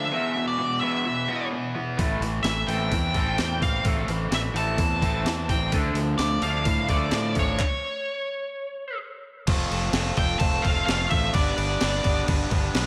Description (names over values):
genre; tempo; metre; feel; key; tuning
indie rock; 128 BPM; 4/4; straight; unclear; A4 = 439 Hz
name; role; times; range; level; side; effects
nasal lead guitar with a parked wah; melody; 0.0-12.2 s; C#5 to A5; -30 LUFS; equal; overdrive
overdriven electric guitar; riff; 0.0-7.6 s; E2 to D4; -33 LUFS; equal; lush chorus
raw garage guitar; riff; 0.0-12.9 s; E2 to B4; -32 LUFS; equal; overdrive, slapback echo
growling fingered electric bass; bass; 2.0-12.9 s; F1 to A2; -31 LUFS; equal; overdrive
breakbeat sampler-style drum kit; drums; 2.0-12.9 s; crash cymbal, handclaps, hi-hat, kick drum, snare drum; -28 LUFS; equal; none
room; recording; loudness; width
moderate lush hall reverb, RT60 1.7 s; big arena sound; -25 LUFS; mono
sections
0.0-9.5 A section; 9.5-12.9 B section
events
stop 7.6-9.5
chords
0.1 E5; 2.0 Am; 5.7 Dmadd9; 7.6 N.C.; 9.5 F; 11.4 G